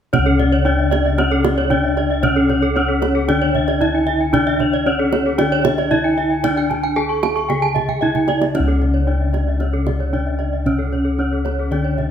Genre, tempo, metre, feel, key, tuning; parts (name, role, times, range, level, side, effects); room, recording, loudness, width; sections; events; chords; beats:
Balinese gamelan; 114 BPM; 4/4; straight; C# pelog; A4 = 440 Hz
gamelan-type bronze metallophone; melody; 0.1-12.1 s; C#4 to A4-40c; -20 LUFS; equal; tape echo
gamelan-type bronze metallophone; arpeggios; 0.1-12.1 s; A4-40c to C#6; -24 LUFS; left 5 dB
gamelan-type bossed gongs; bass; 0.1-12.1 s; C#2 to D4; -20 LUFS; left 1 dB
kendang; percussion; 0.1-12.1 s; -25 LUFS; right 5 dB
gamelan-type bronze metallophone; arpeggios; 0.3-12.0 s; A4-40c to A5-40c; -24 LUFS; right 5 dB
wet recital hall reverb, RT60 1.2 s; -15 LUFS; side -8 dB against mid
0.1-12.1 A section
drum fill 7.9-8.5
| 0.13 0.65 1.18 1.71 | 2.23 2.76 3.29 3.81 | 4.34 4.86 5.39 5.92 | 6.44 6.97 7.50 8.02 | 8.55 9.07 9.60 10.13 | 10.65 11.18 11.71